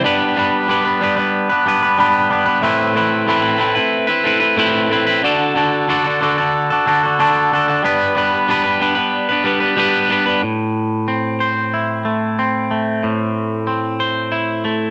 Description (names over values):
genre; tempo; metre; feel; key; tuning
rock; 92 BPM; 4/4; straight; A dorian; A4 = 440 Hz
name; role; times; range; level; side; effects
twangy electric guitar; solo; 0.0-14.9 s; A2 to C5; -16 LUFS; equal; phaser
room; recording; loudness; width
light reverb; nothing above 10.5 kHz; -17 LUFS; mono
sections
0.0-10.4 A section; 10.4-14.9 B section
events
none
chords
0.1 G; 2.6 Amadd9; 5.2 D; 7.8 G; 10.4 Am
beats
| 0.05 0.70 1.35 2.00 | 2.65 3.29 3.94 4.59 | 5.24 5.89 6.54 7.19 | 7.84 8.49 9.13 9.78 | 10.43 11.08 11.73 12.38 | 13.03 13.68 14.33